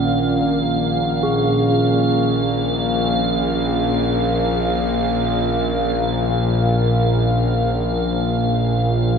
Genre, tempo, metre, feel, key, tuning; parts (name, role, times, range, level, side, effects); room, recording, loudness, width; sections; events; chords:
dark ambient drone; free time; Bb minor; A4 = 440 Hz
bronze singing bowl; arpeggios; 0.0-8.6 s; Eb3 to Ab4; -23 LUFS; right 2 dB; ping-pong delay
bowed-like drone; drone; 0.0-9.2 s; Bb1 to Bb2; -18 LUFS; left 1 dB; built-in reverb
icy glass pad; texture; 0.0-9.2 s; F5; -24 LUFS; right 1 dB; chorus, built-in reverb
wet cathedral reverb, RT60 5.1 s; nothing above 7.5 kHz; -16 LUFS; side -6 dB against mid
0.0-9.2 A section
0.0 Bbm